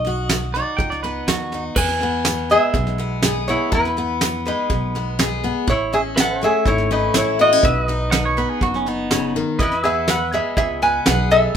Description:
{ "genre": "honky-tonk and classic country", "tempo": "123 BPM", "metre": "4/4", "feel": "straight", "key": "E major", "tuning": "A4 = 437 Hz", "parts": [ { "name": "lap resonator guitar", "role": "melody", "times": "0.0-11.6 s", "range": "D#4 to G#5", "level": "-19 LUFS", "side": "equal", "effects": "none" }, { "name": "picked steel-string acoustic guitar", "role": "accompaniment", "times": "0.0-11.6 s", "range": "E2 to G#4", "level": "-24 LUFS", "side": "left 4 dB", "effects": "none" }, { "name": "upright bass", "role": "bass", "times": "0.0-11.5 s", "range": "F#1 to E2", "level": "-26 LUFS", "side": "right 1 dB", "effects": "none" }, { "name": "soft brush drum kit", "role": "drums", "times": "0.0-11.6 s", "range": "crash cymbal, hi-hat, kick drum, snare drum", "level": "-22 LUFS", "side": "right 2 dB", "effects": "none" }, { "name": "twangy electric guitar", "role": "second line", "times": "0.5-1.6, 8.1-9.3 s", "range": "B3 to G5", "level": "-24 LUFS", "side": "right 4 dB", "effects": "none" }, { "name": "pedal steel guitar", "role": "sustained chords", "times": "1.8-11.5 s", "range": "B4 to G#5", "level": "-26 LUFS", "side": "left 1 dB", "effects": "none" } ], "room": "moderate studio reverb, RT60 0.7 s", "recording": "minimal, uncompressed stereo recording", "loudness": "-17 LUFS", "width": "side -8 dB against mid", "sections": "0.0-1.8 A section; 1.8-11.6 B section", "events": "none", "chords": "0.0 B; 1.8 E; 5.7 A; 7.6 B; 9.6 E" }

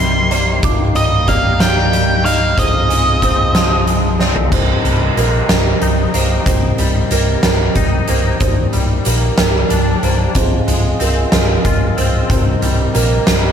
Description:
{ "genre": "post-rock", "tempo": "62 BPM (dotted quarters)", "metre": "6/8", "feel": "straight", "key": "C minor", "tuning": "A4 = 440 Hz", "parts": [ { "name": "octave-fuzz lead guitar", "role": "melody", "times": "0.0-3.8 s", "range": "Eb5 to C6", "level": "-17 LUFS", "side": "right 1 dB", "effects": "distortion, diffuse ambient delay" }, { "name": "pedal harmonium", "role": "sustained chords", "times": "0.0-13.5 s", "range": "C3 to Eb5", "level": "-24 LUFS", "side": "equal", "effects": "none" }, { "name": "felt-muted upright piano", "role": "arpeggios", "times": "0.0-13.5 s", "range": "Bb4 to D6", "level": "-23 LUFS", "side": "right 6 dB", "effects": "wide subtle chorus, diffuse ambient delay" }, { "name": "twangy electric guitar", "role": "arpeggios", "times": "0.0-13.5 s", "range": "C2 to F4", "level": "-22 LUFS", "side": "left 3 dB", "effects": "ensemble chorus, diffuse ambient delay" }, { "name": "mellow fretless electric bass", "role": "bass", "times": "0.0-13.5 s", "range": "C1 to Bb1", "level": "-17 LUFS", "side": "equal", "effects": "wide subtle chorus" }, { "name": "oversized low-tuned drum kit", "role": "drums", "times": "0.3-13.4 s", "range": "crash cymbal, hi-hat, kick drum, snare drum, toms", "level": "-16 LUFS", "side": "equal", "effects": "none" } ], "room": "moderate plate reverb, RT60 1.9 s, small room ambience", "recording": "dreamy mix soaked in reverb", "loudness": "-12 LUFS", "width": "side -8 dB against mid", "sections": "0.0-4.5 A section; 4.5-13.5 B section", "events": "drum fill 4.2-4.5", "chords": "0.0 Cm7; 2.6 Fm7/C; 4.5 Cm7; 8.4 Ebmaj7/C; 10.4 Fm7/C; 12.3 Cm7" }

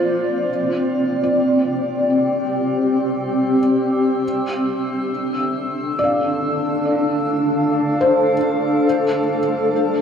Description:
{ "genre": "ambient", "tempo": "free time", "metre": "none", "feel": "none", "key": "D minor", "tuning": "A4 = 441 Hz", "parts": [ { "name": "granular cloud pad", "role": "sustained chords", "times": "0.0-10.0 s", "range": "G3 to E6", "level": "-17 LUFS", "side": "equal", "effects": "built-in reverb, shimmer reverb" }, { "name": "felt-muted upright piano", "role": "arpeggios", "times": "1.2-10.0 s", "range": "C5 to F5", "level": "-24 LUFS", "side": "left 2 dB", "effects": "tape echo, shimmer reverb" } ], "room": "wet cathedral reverb, RT60 5.9 s", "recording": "in a vast, echoing space", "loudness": "-17 LUFS", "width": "side -7 dB against mid", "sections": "0.0-10.0 A section", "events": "filter sweep on ambient pad 0.0-10.0", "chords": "0.0 C9; 4.2 Dm9; 8.8 G7sus2" }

